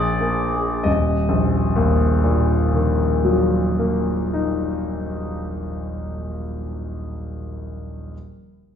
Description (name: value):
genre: classical, romantic character piece for solo piano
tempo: 48 BPM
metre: 2/4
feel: rubato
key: Eb minor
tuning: A4 = 439 Hz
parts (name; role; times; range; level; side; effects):
- clear concert grand piano; solo; 0.0-8.2 s; Eb1 to Eb5; -19 LUFS; left 1 dB; none
room: wet recital hall reverb, RT60 1.4 s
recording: heard from further back in the room, nothing above 7.9 kHz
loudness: -19 LUFS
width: side -8 dB against mid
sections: 0.9-5.9 A section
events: none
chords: 0.0 Bb7; 0.9 Ebm